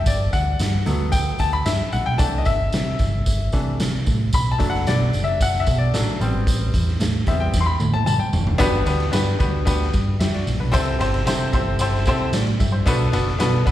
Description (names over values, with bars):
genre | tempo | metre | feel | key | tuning
uptempo 1960s-style soul | 112 BPM | 4/4 | straight | G major | A4 = 440 Hz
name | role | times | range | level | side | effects
bright upright piano | accompaniment | 0.0-13.7 s | G2 to C6 | -23 LUFS | left 2 dB | plate reverb, slapback echo
picked electric bass | bass | 0.0-13.7 s | F1 to C3 | -22 LUFS | equal | none
raw garage drum kit | drums | 0.1-13.7 s | hi-hat, kick drum, ride cymbal, snare drum, toms | -23 LUFS | equal | none
congas | percussion | 0.1-13.7 s | none | -35 LUFS | equal | none
tambourine | percussion | 0.1-13.7 s | none | -34 LUFS | right 4 dB | slapback echo
room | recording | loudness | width
light reverb | live gig heard through the venue's PA, recital hall reverb | -18 LUFS | side -13 dB against mid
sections
0.0-8.6 A section; 8.6-13.7 B section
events
upright piano solo 0.0-8.6; drum fill 7.5-8.6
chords
0.1 Gmaj7; 2.2 C6; 4.3 Bm7; 6.2 Am7; 8.6 Gmaj7; 10.7 C6; 12.9 Bm7